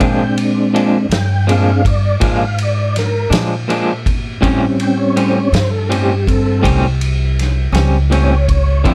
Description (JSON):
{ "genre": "slow blues", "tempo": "54 BPM (dotted quarters)", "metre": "12/8", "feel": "straight", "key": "unclear", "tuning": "A4 = 440 Hz", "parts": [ { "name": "electric guitar at the edge of break-up", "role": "accompaniment", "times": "0.0-8.9 s", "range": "A2 to E4", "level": "-19 LUFS", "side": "equal", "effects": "tremolo" }, { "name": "mellow tonewheel organ", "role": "sustained chords", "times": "0.0-8.9 s", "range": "F3 to G5", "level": "-19 LUFS", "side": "equal", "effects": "slow rotary speaker, chorus vibrato" }, { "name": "upright bass", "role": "bass", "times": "0.0-8.9 s", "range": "B#1 to Bb2", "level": "-18 LUFS", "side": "equal", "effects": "none" }, { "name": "vintage drum kit", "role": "drums", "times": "0.0-8.9 s", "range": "kick drum, ride cymbal, snare drum", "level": "-22 LUFS", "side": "equal", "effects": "none" } ], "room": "light reverb", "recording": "none", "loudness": "-15 LUFS", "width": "mono", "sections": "0.0-8.9 A section", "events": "tonewheel organ solo 0.0-8.9", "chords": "0.0 Bb7; 4.4 A7#9" }